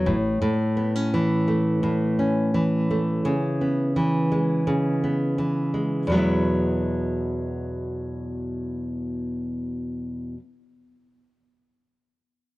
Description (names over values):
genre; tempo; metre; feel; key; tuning
pop; 85 BPM; 4/4; straight; E major; A4 = 440 Hz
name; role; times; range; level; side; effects
nylon-string guitar; accompaniment; 0.0-10.5 s; E2 to E4; -22 LUFS; equal; none
room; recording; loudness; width
light reverb; worn, warbling old tape, cassette tape, warbly pitch drift; -22 LUFS; side -18 dB against mid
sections
0.0-6.1 A section; 6.1-8.9 B section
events
none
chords
0.1 A; 3.3 C#m7; 6.1 Eadd9